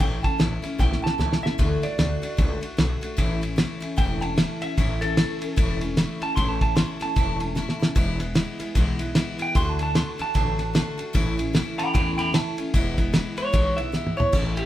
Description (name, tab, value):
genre	rockabilly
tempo	151 BPM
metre	4/4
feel	swing 60% on 8ths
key	A major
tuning	A4 = 441 Hz
part	electric guitar through a small old amp	melody	0.0-14.7 s	G4 to C6	-28 LUFS	right 2 dB	harmonic tremolo
part	picked steel-string acoustic guitar	accompaniment	0.0-14.7 s	E2 to F#4	-29 LUFS	left 1 dB	none
part	upright bass	bass	0.0-14.7 s	E1 to E2	-28 LUFS	equal	none
part	cloth-damped thuddy drum kit	drums	0.0-14.6 s	crash cymbal, kick drum, ride cymbal, snare drum, toms	-24 LUFS	equal	none
room	moderate small room reverb, RT60 0.5 s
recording	band playing live in one room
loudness	-21 LUFS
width	side -13 dB against mid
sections	0.0-14.3 A section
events	clean electric guitar solo 0.0-14.3; drum fill 0.8-1.6, 7.6-8.0, 13.9-14.3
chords	0.0 A; 1.6 D; 3.2 A; 8.0 E; 9.6 D; 11.2 A; 12.7 E